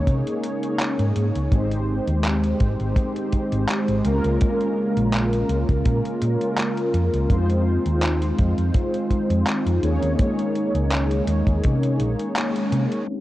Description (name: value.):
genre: vaporwave.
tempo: 83 BPM.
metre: 4/4.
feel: swing 54% on 16ths.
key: unclear.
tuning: A4 = 440 Hz.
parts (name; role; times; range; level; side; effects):
mellow synth brass; accompaniment; 0.0-13.2 s; Ab3 to Db5; -23 LUFS; equal; ensemble chorus, analog delay.
warbly tape-like pad; sustained chords; 0.0-13.2 s; Db3 to G4; -30 LUFS; equal; chorus, built-in reverb.
hollow-body short-scale fingered electric bass; bass; 0.0-12.9 s; Ab1 to C3; -22 LUFS; equal; none.
detuned 8-bit digital drum machine; drums; 0.1-13.2 s; handclaps, hi-hat; -29 LUFS; equal; overdrive, low-pass filter on hats, low-pass filter on snare, low-pass filter on room.
kick drum; drums; 0.1-11.8 s; none; -21 LUFS; equal; none.
room: light reverb, studio reverb.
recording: worn, warbling old tape, cassette tape, warbly pitch drift, low-pass filter.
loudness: -19 LUFS.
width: side -15 dB against mid.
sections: 0.0-13.1 A section.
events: band accent 12.4-12.7.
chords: 0.0 Eb7sus4; 1.5 Abmaj7; 4.0 Db6; 7.3 Fm7; 9.8 Eb7sus4.